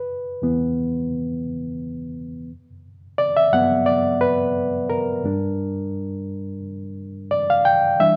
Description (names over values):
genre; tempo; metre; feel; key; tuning
soul; 87 BPM; 4/4; swing 54% on 16ths; G major; A4 = 440 Hz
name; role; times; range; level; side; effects
barky reed electric piano; solo; 0.0-8.2 s; E2 to G5; -22 LUFS; equal; overdrive
room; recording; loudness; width
moderate stone room reverb, RT60 1.1 s; band playing live in one room; -22 LUFS; mono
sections
0.0-8.2 A section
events
reed electric piano solo 0.0-8.2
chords
0.0 E5; 2.5 Gmaj7; 5.2 Gm7